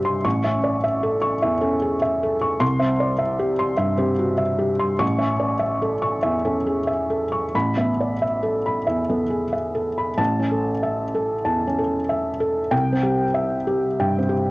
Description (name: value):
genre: neoclassical minimalist piano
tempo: 87-104 BPM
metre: 4/4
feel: rubato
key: unclear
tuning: A4 = 440 Hz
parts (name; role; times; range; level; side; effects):
- felt-muted upright piano; solo; 0.0-14.5 s; A1 to C#6; -19 LUFS; equal; cassette tape
room: light reverb, studio reverb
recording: home recording on cassette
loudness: -19 LUFS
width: side -21 dB against mid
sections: 0.0-10.2 A section; 10.2-14.5 A section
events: none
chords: 0.2 A; 2.6 C; 5.0 A; 7.5 Asus2; 10.2 A; 12.7 C